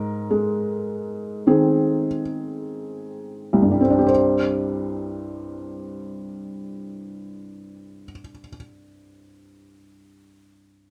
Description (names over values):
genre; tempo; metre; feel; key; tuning
neoclassical minimalist piano; 43-54 BPM; 4/4; rubato; C minor; A4 = 441 Hz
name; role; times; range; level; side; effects
felt-muted upright piano; solo; 0.0-10.9 s; C2 to C5; -24 LUFS; equal; none
room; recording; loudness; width
little or no reverb; close, detailed microphones; -22 LUFS; mono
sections
0.0-4.1 A section; 4.1-9.5 B section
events
slowing down 0.0-4.1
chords
0.0 Abadd9; 4.1 Csus2